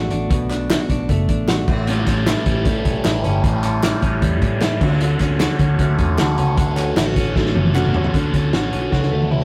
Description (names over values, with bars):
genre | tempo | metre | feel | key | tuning
jangly indie pop | 153 BPM | 4/4 | straight | unclear | A4 = 439 Hz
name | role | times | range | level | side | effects
direct-recorded clean electric guitar | arpeggios | 0.0-9.4 s | A2 to F#4 | -26 LUFS | equal | none
vintage muted fingered electric bass | bass | 0.0-9.4 s | F#1 to A2 | -23 LUFS | equal | none
vintage drum kit | drums | 0.1-9.4 s | crash cymbal, hi-hat, kick drum, snare drum, toms | -23 LUFS | equal | none
group handclap | percussion | 0.5-7.8 s | none | -36 LUFS | equal | none
raw garage guitar | accompaniment | 1.9-9.4 s | A2 to A4 | -26 LUFS | equal | overdrive, phaser
room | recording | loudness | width
moderate stone room reverb, RT60 1.1 s | rough rehearsal-room recording, warm saturation | -18 LUFS | mono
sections
0.0-8.1 A section; 8.1-9.4 B section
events
drum fill 7.4-8.1, 8.9-9.4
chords
0.0 Bm7; 1.7 A7; 4.8 Dmaj7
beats
| 0.31 0.70 1.09 1.48 | 1.88 2.27 2.66 3.05 | 3.44 3.83 4.23 4.62 | 5.01 5.40 5.79 6.18 | 6.58 6.97 7.36 7.75 | 8.14 8.53 8.92 9.32